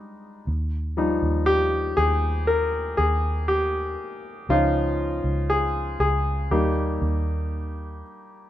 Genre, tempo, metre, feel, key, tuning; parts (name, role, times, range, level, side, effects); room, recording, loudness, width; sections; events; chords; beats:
pop ballad; 60 BPM; 4/4; straight; A4 = 436 Hz
bright concert grand piano; accompaniment; 0.0-8.5 s; F3 to Bb4; -24 LUFS; left 1 dB
vintage muted fingered electric bass; bass; 0.5-8.0 s; Db2 to Eb2; -25 LUFS; right 1 dB
small room ambience; rough home demo mix; -21 LUFS; side -12 dB against mid
0.0-8.5 A section
grand piano solo 0.0-8.5
0.5 Ebadd9; 4.5 Dbadd9; 6.5 Eb
| 0.47 1.48 2.48 3.48 | 4.49 5.50 6.51 7.54